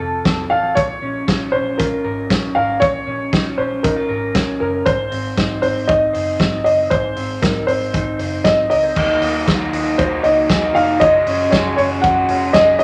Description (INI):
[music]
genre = jangly indie pop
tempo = 117 BPM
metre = 4/4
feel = straight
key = unclear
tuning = A4 = 440 Hz
[part]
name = warm upright piano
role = melody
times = 0.0-12.8 s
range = A4 to Gb5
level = -19 LUFS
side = equal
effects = none
[part]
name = electric guitar through a small old amp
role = arpeggios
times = 0.0-12.8 s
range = Ab2 to C5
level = -26 LUFS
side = equal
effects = none
[part]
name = vintage muted picked electric bass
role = bass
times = 0.0-12.8 s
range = F1 to Eb2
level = -32 LUFS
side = equal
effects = none
[part]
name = loose indie drum kit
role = drums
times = 0.3-12.8 s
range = crash cymbal, hi-hat, kick drum, snare drum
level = -22 LUFS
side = equal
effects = none
[part]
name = raw garage guitar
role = accompaniment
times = 9.0-12.8 s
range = Eb3 to Gb4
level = -25 LUFS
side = equal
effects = overdrive
[sound]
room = wet large studio reverb, RT60 0.8 s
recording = none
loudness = -17 LUFS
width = mono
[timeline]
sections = 0.0-9.0 A section; 9.0-12.8 B section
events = none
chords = 0.0 F; 0.8 Bbm; 4.9 Ab; 9.0 Ebm; 11.0 Gbsus2